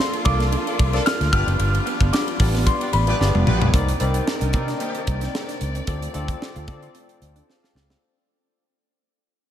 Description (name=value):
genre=polished 1980s jazz-funk pop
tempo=112 BPM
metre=4/4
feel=swing 54% on 16ths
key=unclear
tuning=A4 = 438 Hz
part: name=warm grand piano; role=melody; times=0.0-3.4 s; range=B5 to F6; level=-26 LUFS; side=left 1 dB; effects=wide subtle chorus, tape echo
part: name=barky tine electric piano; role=accompaniment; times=0.0-8.1 s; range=Bb3 to A5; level=-28 LUFS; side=left 2 dB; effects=overdrive, lush chorus
part: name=warm chamber string section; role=sustained chords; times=0.0-8.0 s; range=C3 to D5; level=-33 LUFS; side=equal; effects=none
part: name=electric guitar through a small old amp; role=riff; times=0.0-8.0 s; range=G3 to F4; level=-33 LUFS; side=right 3 dB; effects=lush chorus
part: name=crisp fusion drum kit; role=drums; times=0.0-8.0 s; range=hi-hat, kick drum, ride cymbal, snare drum, toms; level=-24 LUFS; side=equal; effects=none
part: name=vintage muted fingered electric bass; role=bass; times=0.3-7.9 s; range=F1 to D3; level=-22 LUFS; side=equal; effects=none
part: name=clear horn section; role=second line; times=0.7-5.0 s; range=G3 to D5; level=-33 LUFS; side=equal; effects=tape echo
room=moderate huge ambient reverb, RT60 4.3 s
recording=dreamy mix soaked in reverb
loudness=-18 LUFS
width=side -10 dB against mid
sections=0.0-3.7 A section; 3.7-8.0 B section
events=drum fill 3.2-3.7, 7.5-8.0; fade-out 3.7-8.0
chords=0.0 Bbmaj7; 1.3 G7; 3.7 Cm9; 5.9 Dm7